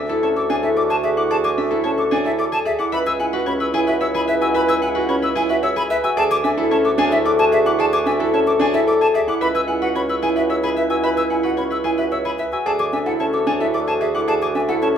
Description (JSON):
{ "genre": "classical, minimalist pattern music", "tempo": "111 BPM", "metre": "3/4", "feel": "straight", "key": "D lydian", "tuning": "A4 = 440 Hz", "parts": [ { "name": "concert harp", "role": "melody", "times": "0.0-15.0 s", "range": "G#4 to G#5", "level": "-22 LUFS", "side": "left 6 dB", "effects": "none" }, { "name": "dark clarinet", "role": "second line", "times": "0.0-15.0 s", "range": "E4 to F#4", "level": "-27 LUFS", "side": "right 4 dB", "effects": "none" }, { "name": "warm grand piano", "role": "arpeggios", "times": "0.0-15.0 s", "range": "C#4 to C#5", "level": "-23 LUFS", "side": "right 4 dB", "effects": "none" }, { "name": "mellow bassoon", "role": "bass", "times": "0.0-15.0 s", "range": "C#2 to D2", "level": "-24 LUFS", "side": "right 2 dB", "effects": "none" }, { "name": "hollow concert flute", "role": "arpeggios", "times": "0.2-15.0 s", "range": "E5 to E6", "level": "-22 LUFS", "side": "left 1 dB", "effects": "none" } ], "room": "wet large studio reverb, RT60 0.9 s", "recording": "heard from further back in the room", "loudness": "-16 LUFS", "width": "side -8 dB against mid", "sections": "0.0-15.0 A section", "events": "none", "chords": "0.0 Dmaj9; 2.9 C#m7; 6.2 Dmaj9; 9.4 C#m7; 12.7 Dmaj9", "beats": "0.23 0.77 | 1.31 1.85 2.39 | 2.93 3.47 4.01 | 4.55 5.09 5.63 | 6.17 6.71 7.25 | 7.79 8.33 8.87 | 9.41 9.96 10.50 | 11.04 11.58 12.12 | 12.66 13.20 13.74 | 14.28 14.82" }